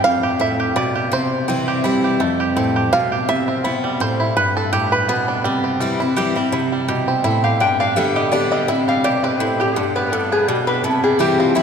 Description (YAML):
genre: bluegrass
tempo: 167 BPM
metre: 3/4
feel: swing 54% on 8ths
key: C major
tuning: A4 = 440 Hz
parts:
  - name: bluegrass banjo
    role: melody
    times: 0.0-11.6 s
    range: D3 to F5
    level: -20 LUFS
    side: right 3 dB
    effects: none
  - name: picked steel-string acoustic guitar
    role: accompaniment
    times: 0.0-11.6 s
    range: F2 to G4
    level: -20 LUFS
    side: left 1 dB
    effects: none
  - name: lap resonator guitar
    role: second line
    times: 7.2-11.6 s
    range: E4 to G5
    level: -19 LUFS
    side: left 2 dB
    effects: none
room: wet cathedral reverb, RT60 5.9 s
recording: recorded in a church or concert hall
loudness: -16 LUFS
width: side -6 dB against mid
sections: 0.0-6.5 A section; 6.5-11.6 A section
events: five-string banjo solo 0.0-6.5; resonator guitar played with a steel bar solo 6.5-11.6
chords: 0.0 F; 1.1 C; 2.2 F; 3.3 C; 4.4 G; 5.4 C; 7.6 G; 8.7 C; 9.8 G; 10.8 C